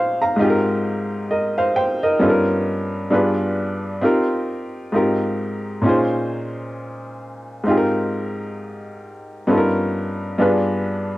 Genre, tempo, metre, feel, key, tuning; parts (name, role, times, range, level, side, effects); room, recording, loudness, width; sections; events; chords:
R&B; 66 BPM; 4/4; swing 59% on 16ths; A4 = 437 Hz
clear upright piano; solo; 0.0-11.2 s; G2 to Bb5; -18 LUFS; equal; cassette tape
moderate spring reverb, RT60 1.3 s, studio ambience; home recording on cassette; -18 LUFS; side -17 dB against mid
0.0-5.8 A section; 5.8-11.2 B section
0.4 Abmaj9; 2.2 G7alt; 3.1 G7b9; 4.0 Cm7; 4.9 Abmaj7; 5.8 Bbm7; 7.7 Abmaj9; 9.5 G7alt; 10.4 G7b9